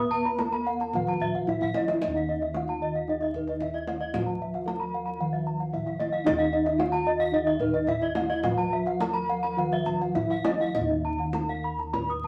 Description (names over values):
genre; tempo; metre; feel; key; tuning
Balinese gamelan; 101-113 BPM; 4/4; straight; Eb pelog; A4 = 440 Hz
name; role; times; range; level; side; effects
gamelan-type bronze metallophone; melody; 0.0-12.3 s; Eb4 to Cb5-40c; -33 LUFS; equal; none
gamelan-type bronze metallophone; accompaniment; 0.0-10.8 s; Eb3 to Cb4-40c; -38 LUFS; equal; none
gamelan-type bronze metallophone; arpeggios; 0.0-12.3 s; Eb5 to Eb6; -35 LUFS; equal; none
gamelan-type bossed gongs; bass; 0.0-12.3 s; Eb2 to Cb5-40c; -37 LUFS; equal; none
gamelan-type bronze metallophone; arpeggios; 0.3-12.1 s; Cb5-40c to Cb6-40c; -32 LUFS; equal; none
kendang; percussion; 0.3-12.3 s; none; -37 LUFS; equal; none
room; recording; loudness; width
wet studio reverb, RT60 0.6 s; vinyl crackle; -27 LUFS; mono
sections
0.0-2.0 A section; 2.0-10.7 B section; 10.7-12.3 A section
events
drum fill 1.3-2.0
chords
none